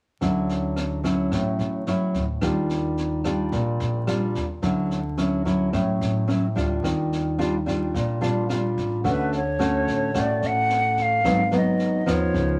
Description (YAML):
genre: bossa nova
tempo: 109 BPM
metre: 4/4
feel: straight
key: unclear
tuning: A4 = 441 Hz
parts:
  - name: nylon-string guitar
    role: accompaniment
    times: 0.2-12.6 s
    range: G#2 to F#4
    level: -25 LUFS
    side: equal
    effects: none
  - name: upright bass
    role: bass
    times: 0.2-12.6 s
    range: G#1 to Eb2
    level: -32 LUFS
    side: equal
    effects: none
  - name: jazz brush drum kit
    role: drums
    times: 0.2-12.5 s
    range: kick drum, rim click, snare drum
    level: -37 LUFS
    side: equal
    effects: none
  - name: hollow concert flute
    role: melody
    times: 9.1-12.6 s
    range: B4 to F#5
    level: -26 LUFS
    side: equal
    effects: none
room: moderate studio reverb, RT60 0.6 s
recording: vinyl crackle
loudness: -24 LUFS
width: mono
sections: 0.2-9.0 A section; 9.0-12.6 B section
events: none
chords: 0.2 Dmaj9; 2.4 Ebmaj9; 4.6 Dmaj9; 6.8 Ebmaj9; 9.0 Dmaj7; 11.2 G#m7